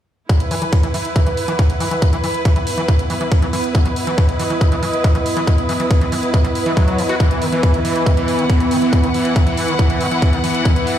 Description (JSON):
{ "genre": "psychedelic trance", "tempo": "139 BPM", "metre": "4/4", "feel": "straight", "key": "unclear", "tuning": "A4 = 444 Hz", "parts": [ { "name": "evolving wavetable pad", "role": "sustained chords", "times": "0.9-11.0 s", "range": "B3 to D#5", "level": "-22 LUFS", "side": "equal", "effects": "phaser, built-in reverb, vintage 12-bit sampler grit, sidechain pumping" }, { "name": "screaming distorted acid line", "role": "riff", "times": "0.3-11.0 s", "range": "D#3 to F#4", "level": "-23 LUFS", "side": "equal", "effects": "distortion, chorus, auto-pan, sidechain pumping, dub echo" }, { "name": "electronic hi-hat", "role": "drums", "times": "0.3-11.0 s", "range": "none", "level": "-31 LUFS", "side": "right 3 dB", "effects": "overdrive, studio reverb" }, { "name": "electronic kick drum", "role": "drums", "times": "0.3-10.7 s", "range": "none", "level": "-14 LUFS", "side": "equal", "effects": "overdrive, studio reverb" }, { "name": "rich symphonic string section", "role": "texture", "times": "0.3-11.0 s", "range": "E4 to F#5", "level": "-22 LUFS", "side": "equal", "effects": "sidechain pumping" }, { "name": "riser", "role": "sound effects", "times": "10.7-11.0 s", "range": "none", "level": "barely audible", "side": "none", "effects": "none" } ], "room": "light reverb", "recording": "played on a big sound system in a bare room, stone room reverb", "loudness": "-14 LUFS", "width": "side -10 dB against mid", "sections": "0.3-11.0 A section", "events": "filter sweep on acid bass 0.3-11.0", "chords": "0.3 E5" }